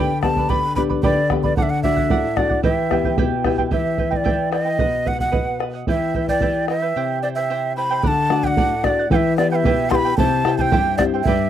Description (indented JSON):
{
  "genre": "andean folk, Andean ensemble",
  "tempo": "112 BPM",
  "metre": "2/4",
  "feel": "straight",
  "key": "E minor",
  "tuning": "A4 = 440 Hz",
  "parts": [
    { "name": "breathy large quena", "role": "melody", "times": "0.0-11.5 s", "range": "D5 to C6", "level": "-21 LUFS", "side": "right 1 dB", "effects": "none" },
    { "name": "charango", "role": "accompaniment", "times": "0.0-11.5 s", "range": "E4 to B5", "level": "-25 LUFS", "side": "right 9 dB", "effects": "none" },
    { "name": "nylon-string guitar", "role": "accompaniment", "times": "0.0-11.5 s", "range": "G2 to G4", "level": "-22 LUFS", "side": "left 6 dB", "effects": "none" },
    { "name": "bombo", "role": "percussion", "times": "0.2-11.4 s", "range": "none", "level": "-22 LUFS", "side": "right 1 dB", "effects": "none" }
  ],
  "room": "light reverb",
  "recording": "dry, close 1970s-style studio recording",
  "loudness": "-17 LUFS",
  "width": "side -10 dB against mid",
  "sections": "0.0-3.7 A section; 3.7-8.0 B section; 8.0-11.5 C section",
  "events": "none",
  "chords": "0.0 G; 1.6 D; 2.6 Em; 4.8 B; 5.9 Em; 7.0 C; 8.0 D; 9.1 Em; 10.2 C",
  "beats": "| 0.49 1.03 | 1.57 2.10 | 2.64 3.18 | 3.72 4.26 | 4.80 5.34 | 5.88 6.42 | 6.96 7.49 | 8.03 8.57 | 9.11 9.64 | 10.18 10.72 | 11.26"
}